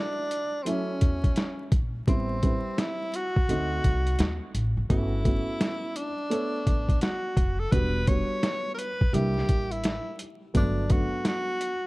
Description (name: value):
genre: hip hop, jazz-hop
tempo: 85 BPM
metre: 4/4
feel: swing 64% on 16ths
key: unclear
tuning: A4 = 439 Hz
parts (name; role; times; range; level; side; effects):
- breathy tenor saxophone; melody; 0.0-11.9 s; B#3 to C#5; -31 LUFS; equal; none
- dark upright piano; accompaniment; 0.0-11.7 s; F#3 to C#5; -32 LUFS; right 1 dB; none
- boom bap sampler-style drum kit; drums; 0.3-11.8 s; hi-hat, kick drum, snare drum; -26 LUFS; equal; none
- upright bass; bass; 1.0-11.0 s; E1 to E2; -29 LUFS; equal; none
room: studio reverb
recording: dark, warm production, vinyl crackle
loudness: -24 LUFS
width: side -21 dB against mid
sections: 0.0-11.9 A section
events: none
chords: 0.0 Dmaj7; 2.1 Am9; 3.5 D7b9; 4.9 Gmaj9#11; 7.7 Em7; 9.1 C9; 10.5 Gmaj7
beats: 0.67 1.37 | 2.08 2.78 3.49 4.19 | 4.90 5.61 6.31 7.02 | 7.72 8.43 9.14 9.84 | 10.55 11.25